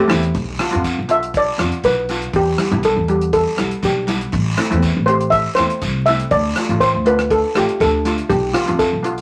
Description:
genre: calypso.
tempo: 121 BPM.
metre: 4/4.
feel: straight.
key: unclear.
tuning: A4 = 439 Hz.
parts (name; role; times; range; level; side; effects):
steel pan; accompaniment; 0.0-9.2 s; G3 to G4; -24 LUFS; equal; none.
upright bass; bass; 0.1-9.2 s; A1 to F2; -23 LUFS; equal; none.
damped 70s drum kit; drums; 0.1-9.2 s; hi-hat, kick drum, rim click; -29 LUFS; equal; none.
guiro; percussion; 0.1-8.9 s; none; -31 LUFS; equal; none.
steel pan; melody; 1.1-9.0 s; F4 to E5; -19 LUFS; equal; none.
room: moderate studio reverb, RT60 0.6 s.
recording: vinyl crackle.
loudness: -17 LUFS.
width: mono.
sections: 0.4-9.2 A section.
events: steel pan solo 0.4-9.2.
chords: 0.4 Bdim; 2.3 Em; 4.3 Am; 6.3 Dm; 8.3 Bdim.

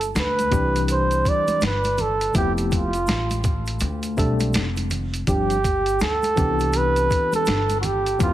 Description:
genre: hip hop, jazz-hop.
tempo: 82 BPM.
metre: 4/4.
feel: swing 63% on 16ths.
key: C major.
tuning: A4 = 439 Hz.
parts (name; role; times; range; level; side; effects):
mellow flugelhorn; melody; 0.0-8.3 s; F4 to D5; -22 LUFS; right 2 dB; tape echo.
upright bass; bass; 0.0-8.3 s; F1 to D2; -25 LUFS; equal; none.
boom bap sampler-style drum kit; drums; 0.0-8.3 s; hi-hat, kick drum, snare drum; -25 LUFS; equal; none.
egg shaker and congas; percussion; 0.0-8.3 s; none; -34 LUFS; right 3 dB; none.
tine electric piano; accompaniment; 0.5-8.3 s; E3 to A4; -26 LUFS; left 3 dB; medium stereo tremolo.
room: light reverb, small room ambience.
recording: heavily compressed radio sound.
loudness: -19 LUFS.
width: side -13 dB against mid.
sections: 0.0-8.3 A section.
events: none.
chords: 0.0 G5; 0.5 Cadd9; 2.4 Fmaj9#11; 3.8 D7sus4; 5.3 G7sus4; 6.4 Cmaj9.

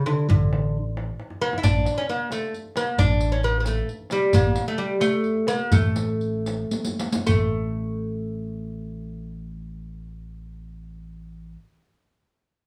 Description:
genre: Persian modal ensemble.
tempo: 71-89 BPM (dotted quarters).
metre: 6/8.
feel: straight.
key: A dastgah homayun.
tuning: A4 = 440 Hz.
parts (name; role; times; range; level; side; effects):
lute; melody; 0.0-11.5 s; D3 to E4; -27 LUFS; equal; none.
tombak; percussion; 0.1-7.5 s; none; -27 LUFS; equal; none.
upright bass; bass; 0.3-11.5 s; A1; -29 LUFS; equal; none.
riq; percussion; 1.6-7.5 s; none; -34 LUFS; equal; none.
room: light reverb.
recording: small room ambience.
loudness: -24 LUFS.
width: mono.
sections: 0.0-7.3 A section; 7.3-10.6 B section.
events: drum fill 1.2-1.6, 6.7-7.3; slowing down 4.3-7.3.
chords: none.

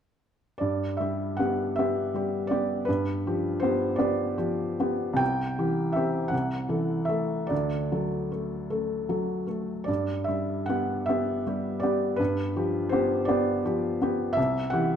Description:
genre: classical, romantic nocturne for solo piano.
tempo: 52 BPM (dotted quarters).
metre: 12/8.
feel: uneven beats, rubato.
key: G major.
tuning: A4 = 440 Hz.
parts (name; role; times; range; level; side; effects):
felt-muted upright piano; solo; 0.6-15.0 s; C2 to G5; -25 LUFS; equal; none.
room: moderate large studio reverb, RT60 1.3 s.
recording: dark, warm production.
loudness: -25 LUFS.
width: side -8 dB against mid.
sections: 0.6-15.0 A section.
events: none.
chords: 0.6 G; 2.9 G7; 5.2 C; 6.3 Am/C; 7.5 D; 9.9 G; 12.2 G7; 14.4 C.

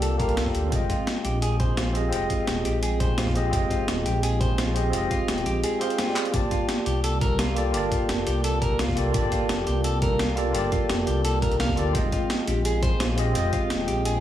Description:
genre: liquid drum and bass.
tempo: 171 BPM.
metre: 4/4.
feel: straight.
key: unclear.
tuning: A4 = 440 Hz.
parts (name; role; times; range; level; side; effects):
tine electric piano; accompaniment; 0.0-14.2 s; Ab3 to A5; -27 LUFS; equal; medium stereo tremolo, digital delay.
electric guitar at the edge of break-up; arpeggios; 0.0-14.2 s; F4 to F5; -31 LUFS; right 1 dB; spring reverb, low-pass filter, digital delay.
dark detuned saw bass; bass; 0.0-14.2 s; Eb1 to D2; -26 LUFS; equal; none.
breakbeat sampler-style drum kit; drums; 0.0-14.1 s; handclaps, hi-hat, snare drum; -30 LUFS; equal; overdrive.
electronic kick drum; drums; 0.2-13.6 s; none; -27 LUFS; equal; overdrive.
room: light reverb.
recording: studio reverb.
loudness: -22 LUFS.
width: side -12 dB against mid.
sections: 0.0-14.2 A section.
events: drum fill 6.2.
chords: 0.0 Gm9; 0.7 Fm9; 6.3 Gm9; 11.9 Fm9.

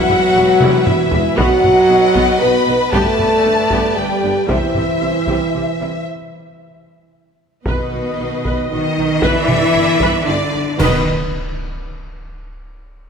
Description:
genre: cinematic, epic orchestral film score.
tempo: 115 BPM.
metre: 3/4.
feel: straight.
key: B mixolydian.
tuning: A4 = 440 Hz.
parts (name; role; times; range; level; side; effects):
rich symphonic violin section; melody; 0.0-11.1 s; B4 to B5; -23 LUFS; left 4 dB; none.
rich symphonic violin section; second line; 0.0-11.1 s; B4 to E5; -24 LUFS; left 2 dB; none.
small flute group; second line; 0.0-6.0 s; E5 to B5; -23 LUFS; left 4 dB; none.
warm symphonic viola section; accompaniment; 0.0-11.1 s; G3 to D#5; -24 LUFS; right 1 dB; none.
dark trombone section; sustained chords; 0.0-11.0 s; D3 to B3; -22 LUFS; right 4 dB; none.
mellow French horn section; sustained chords; 0.0-11.0 s; B3 to B4; -18 LUFS; left 1 dB; none.
rich symphonic cello section; bass; 0.1-11.1 s; E2 to E3; -23 LUFS; right 2 dB; none.
rich symphonic double bass section; bass; 0.1-11.1 s; E1 to C2; -26 LUFS; right 3 dB; none.
solo taiko drums; drums; 0.1-10.9 s; none; -22 LUFS; equal; none.
cymbal swell, clash cymbals and concert bass drum; percussion; 7.7-11.8 s; none; -26 LUFS; equal; none.
room: wet concert hall reverb, RT60 2.4 s.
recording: none.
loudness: -13 LUFS.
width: side -6 dB against mid.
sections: 0.0-7.7 A section; 7.7-10.8 B section; 10.8-12.4 C section.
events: drum fill 0.6-1.4, 6.9-7.7; break 6.1-7.7; band accent 10.8-11.3.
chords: 0.0 Em; 1.4 B; 2.9 G; 4.5 C; 6.1 N.C.; 7.7 B; 9.2 G; 10.8 B.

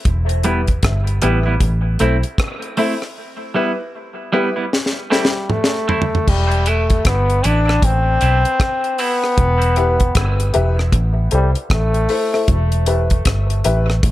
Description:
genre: dub reggae.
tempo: 77 BPM.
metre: 4/4.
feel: swing 61% on 16ths.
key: E minor.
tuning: A4 = 441 Hz.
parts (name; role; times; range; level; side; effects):
vintage muted fingered electric bass; bass; 0.1-14.1 s; E1 to C2; -17 LUFS; equal; none.
deep reggae drum kit; drums; 0.1-14.1 s; crash cymbal, hi-hat, kick drum, rim click, snare drum, toms; -19 LUFS; equal; none.
semi-hollow electric guitar; accompaniment; 0.4-9.2 s; G3 to E4; -23 LUFS; right 3 dB; high-pass filter, low-pass filter, dub echo.
dark upright piano; stabs; 0.4-13.8 s; E4 to E5; -24 LUFS; left 4 dB; high-pass filter, low-pass filter, dub echo.
bright trombone; melody; 5.1-12.5 s; G3 to D4; -20 LUFS; left 1 dB; low-pass filter, dub echo.
room: light reverb, studio ambience.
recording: none.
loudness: -14 LUFS.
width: side -15 dB against mid.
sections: 0.0-6.3 A section; 6.3-14.1 B section.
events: break 0.0-3.2; filter sweep 3.2-9.4; drum fill 4.7-6.3.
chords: 0.1 Em; 1.6 Am; 3.2 Em; 4.7 Am; 6.3 Em; 7.8 Am; 9.4 Em; 10.9 Am; 12.5 Em.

